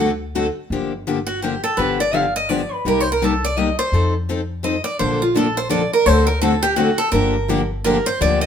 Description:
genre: acoustic string swing (jazz manouche)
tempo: 168 BPM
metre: 3/4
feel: swing 60% on 8ths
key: G minor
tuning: A4 = 441 Hz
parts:
  - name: picked plugged-in steel-string acoustic guitar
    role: accompaniment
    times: 0.0-0.5, 5.0-8.4 s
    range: D3 to A4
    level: -24 LUFS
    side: right 4 dB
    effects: none
  - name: picked steel-string acoustic guitar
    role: accompaniment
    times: 0.0-8.4 s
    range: C3 to A4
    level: -21 LUFS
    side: left 4 dB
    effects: none
  - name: upright bass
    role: bass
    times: 0.0-8.5 s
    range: G1 to F2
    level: -24 LUFS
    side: left 1 dB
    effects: none
  - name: picked steel-string acoustic guitar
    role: second line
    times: 1.3-8.5 s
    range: F4 to F5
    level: -19 LUFS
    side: right 1 dB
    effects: none
room: moderate studio reverb, RT60 0.7 s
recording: minimal, uncompressed stereo recording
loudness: -17 LUFS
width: side -8 dB against mid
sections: 0.7-8.5 A section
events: steel-string acoustic guitar solo 0.7-8.5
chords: 0.0 D7; 0.7 Gm7; 1.8 G7; 2.8 Cm7; 3.9 F7; 5.0 Bbmaj7; 6.1 D7; 7.1 Gm7

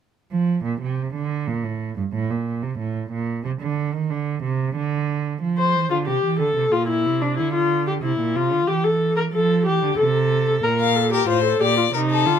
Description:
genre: classical, baroque-style fugue for string quartet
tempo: 92 BPM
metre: 4/4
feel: straight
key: Bb major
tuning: A4 = 440 Hz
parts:
  - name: rich cello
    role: bass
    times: 0.3-12.4 s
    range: G2 to F3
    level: -23 LUFS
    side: right 6 dB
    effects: none
  - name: dark viola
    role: accompaniment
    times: 5.6-12.4 s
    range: D4 to C5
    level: -20 LUFS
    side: left 3 dB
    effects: none
  - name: rich violin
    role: second line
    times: 10.8-12.4 s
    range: A4 to F5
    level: -20 LUFS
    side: left 12 dB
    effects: none
room: light reverb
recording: close, detailed microphones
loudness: -19 LUFS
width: side -8 dB against mid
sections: 0.1-12.4 A section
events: none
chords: 0.1 Bb; 1.5 N.C.; 2.8 Asus4; 4.1 Csus2; 5.4 F; 6.7 Gm7/Bb (rootless); 8.0 C7; 9.3 F; 10.6 Bb

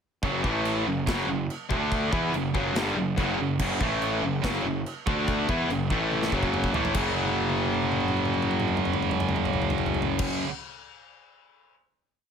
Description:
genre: heavy metal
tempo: 143 BPM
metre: 4/4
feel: straight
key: F# phrygian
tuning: A4 = 441 Hz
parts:
  - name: distorted electric guitar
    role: riff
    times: 0.2-10.5 s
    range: F#2 to E4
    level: -29 LUFS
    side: left 10 dB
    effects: overdrive
  - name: heavy high-gain guitar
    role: riff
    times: 0.2-10.5 s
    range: F#2 to E4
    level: -28 LUFS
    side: right 12 dB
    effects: distortion
  - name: fuzz picked electric bass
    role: bass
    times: 0.2-10.2 s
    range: F#1 to E2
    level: -31 LUFS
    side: equal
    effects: overdrive
  - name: big rock drum kit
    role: drums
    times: 0.2-11.8 s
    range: china cymbal, crash cymbal, kick drum, snare drum, toms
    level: -31 LUFS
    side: equal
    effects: none
room: light reverb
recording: none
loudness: -24 LUFS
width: side -7 dB against mid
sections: 0.2-7.0 riff; 7.0-10.3 final chord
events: drum fill 6.1-7.0, 7.2-10.2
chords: 0.2 F#5; 0.4 A5; 0.9 F#5; 1.7 D5; 2.1 F#5; 3.8 A5; 4.2 F#5; 5.1 D5; 5.5 F#5; 5.9 A5; 6.3 F#m; 7.0 F#5

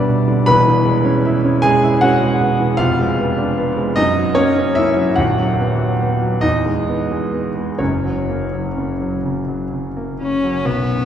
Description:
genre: classical, romantic duo for cello and grand piano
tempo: 40-53 BPM (dotted quarters)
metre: 6/8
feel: rubato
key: unclear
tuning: A4 = 437 Hz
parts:
  - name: warm concert grand piano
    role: accompaniment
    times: 0.0-11.1 s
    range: D#1 to B5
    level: -15 LUFS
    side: equal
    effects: none
  - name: rich cello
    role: melody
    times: 10.2-11.1 s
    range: B3 to C#4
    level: -18 LUFS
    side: left 3 dB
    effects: none
room: wet cathedral reverb, RT60 4.8 s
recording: recorded in a church or concert hall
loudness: -15 LUFS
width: side -9 dB against mid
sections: 0.0-10.7 A section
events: none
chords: 0.5 C#m7/E; 2.8 Fdim7; 4.0 F#; 5.2 B/D#; 6.4 E; 7.8 F#

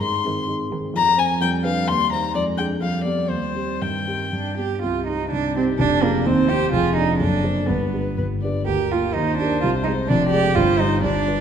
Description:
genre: quick classical-period movement for piano trio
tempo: 127 BPM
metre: 2/4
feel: rubato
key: C minor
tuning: A4 = 440 Hz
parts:
  - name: dark violin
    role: melody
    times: 0.0-11.4 s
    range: G4 to C6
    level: -24 LUFS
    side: left 6 dB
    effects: none
  - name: dark concert grand piano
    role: accompaniment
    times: 0.0-11.4 s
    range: F1 to D5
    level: -22 LUFS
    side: equal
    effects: none
  - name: rich cello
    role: second line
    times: 0.3-11.4 s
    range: Eb3 to G4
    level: -23 LUFS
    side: right 6 dB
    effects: none
room: wet concert hall reverb, RT60 1.7 s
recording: none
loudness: -18 LUFS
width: side -8 dB against mid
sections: 0.0-4.8 A section; 4.8-11.4 B section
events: none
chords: 0.0 Ab; 0.9 Fm; 1.4 G7/F; 1.9 Cm/Eb; 2.3 Ddim/F; 2.8 G7/F; 3.3 Cm/Eb; 3.8 Cm/G; 4.3 G; 4.8 Cm; 5.8 Ddim/F; 6.3 Cm/Eb; 6.7 Ddim/F; 7.2 D7/F#; 7.7 G; 8.7 Bb/D; 9.2 Eb; 9.6 Ab/C; 10.1 Ddim/F; 10.6 Cm/G

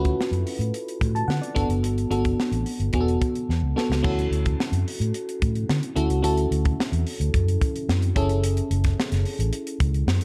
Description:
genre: polished 1980s jazz-funk pop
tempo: 109 BPM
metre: 4/4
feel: straight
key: unclear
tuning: A4 = 440 Hz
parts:
  - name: bell-like FM electric piano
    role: accompaniment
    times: 0.0-10.2 s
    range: B3 to A5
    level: -29 LUFS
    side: equal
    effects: lush chorus
  - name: vintage muted fingered electric bass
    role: bass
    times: 0.0-10.2 s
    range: E1 to D3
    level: -26 LUFS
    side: equal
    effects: none
  - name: crisp fusion drum kit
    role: drums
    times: 0.0-10.2 s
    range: crash cymbal, hi-hat, kick drum, snare drum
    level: -29 LUFS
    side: equal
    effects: none
room: light reverb, small room ambience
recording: dark, warm production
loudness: -24 LUFS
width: mono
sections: 0.0-4.0 A section; 4.0-10.2 B section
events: drum fill 3.5-4.0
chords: 0.0 Dmaj9; 1.6 Gmaj9; 2.9 E9sus4; 4.0 Dmaj7; 8.2 F#m7

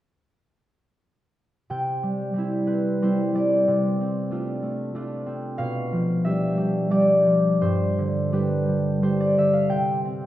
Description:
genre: classical, solo harp piece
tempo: 84-94 BPM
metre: 3/4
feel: rubato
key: C major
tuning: A4 = 440 Hz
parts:
  - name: concert harp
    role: solo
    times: 1.7-10.3 s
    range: G2 to G5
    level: -20 LUFS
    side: equal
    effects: none
room: moderate recital hall reverb, RT60 1.3 s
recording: none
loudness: -20 LUFS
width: side -13 dB against mid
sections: 1.7-10.3 A section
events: none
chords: 1.7 C; 3.7 Dm7/C; 5.6 G7/B; 7.6 G; 9.7 C5

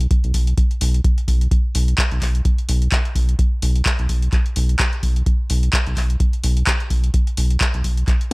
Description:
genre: acid house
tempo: 128 BPM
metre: 4/4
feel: swing 56% on 16ths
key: unclear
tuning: A4 = 441 Hz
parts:
  - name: round analog bass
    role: bass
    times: 0.0-8.0 s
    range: B1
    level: -18 LUFS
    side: equal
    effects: tube saturation, sidechain pumping
  - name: punchy analog drum machine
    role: drums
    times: 0.0-8.3 s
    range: handclaps, hi-hat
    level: -24 LUFS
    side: equal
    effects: none
  - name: electronic kick drum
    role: drums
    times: 0.1-8.2 s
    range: none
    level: -18 LUFS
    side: equal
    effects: none
room: little or no reverb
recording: none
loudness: -16 LUFS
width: side -27 dB against mid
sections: 0.0-8.3 A section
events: none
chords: none

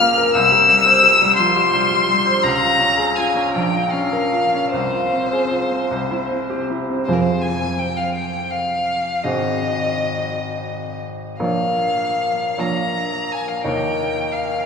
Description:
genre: classical, romantic duo for violin and grand piano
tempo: 48-60 BPM (dotted quarters)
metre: 6/8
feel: rubato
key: F minor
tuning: A4 = 442 Hz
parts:
  - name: rich violin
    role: melody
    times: 0.0-14.7 s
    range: Bb4 to F6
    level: -17 LUFS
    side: left 2 dB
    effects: none
  - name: bright baby grand piano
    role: accompaniment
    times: 0.0-14.7 s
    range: Ab1 to Db5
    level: -20 LUFS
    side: equal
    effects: none
room: wet cathedral reverb, RT60 5.0 s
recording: recorded in a church or concert hall, small room ambience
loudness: -16 LUFS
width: side -6 dB against mid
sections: 0.0-7.1 A section; 7.1-14.7 B section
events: none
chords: 0.3 C; 2.4 Db; 3.5 Bbm; 4.7 Fm/C; 5.9 C; 7.1 Fm; 9.2 Ab7; 11.4 Bbm; 13.7 Eb7

